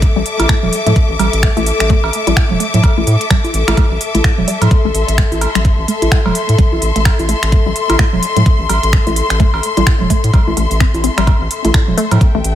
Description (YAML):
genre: minimal techno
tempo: 128 BPM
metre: 4/4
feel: swing 59% on 16ths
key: A minor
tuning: A4 = 438 Hz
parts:
  - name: round analog bass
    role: bass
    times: 0.0-12.5 s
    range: E1 to A2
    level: -16 LUFS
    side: equal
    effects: sidechain pumping
  - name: electronic kick drum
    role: drums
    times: 0.0-12.3 s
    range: none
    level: -12 LUFS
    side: equal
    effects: studio reverb
  - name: minimal click drum kit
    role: drums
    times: 0.0-12.6 s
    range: finger snaps, hi-hat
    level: -20 LUFS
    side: equal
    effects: overdrive, studio reverb
  - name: warm symphonic string section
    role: texture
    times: 0.0-12.6 s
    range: A4 to D6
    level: -18 LUFS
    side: left 4 dB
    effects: sidechain pumping
  - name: hollow square pluck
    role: riff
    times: 0.2-12.4 s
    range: G3 to C4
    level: -22 LUFS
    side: left 2 dB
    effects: chorus, phaser, sidechain pumping, tape echo
  - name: cowbell, bongos and congas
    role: percussion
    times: 0.4-12.2 s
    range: none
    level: -20 LUFS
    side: right 3 dB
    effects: studio reverb, dub echo
room: light reverb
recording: none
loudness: -11 LUFS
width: side -12 dB against mid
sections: 0.0-12.6 A section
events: none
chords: 0.0 Am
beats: | 0.02 0.49 0.96 1.43 | 1.90 2.37 2.83 3.30 | 3.77 4.24 4.71 5.18 | 5.65 6.12 6.58 7.05 | 7.52 7.99 8.46 8.93 | 9.40 9.87 10.34 10.80 | 11.27 11.74 12.21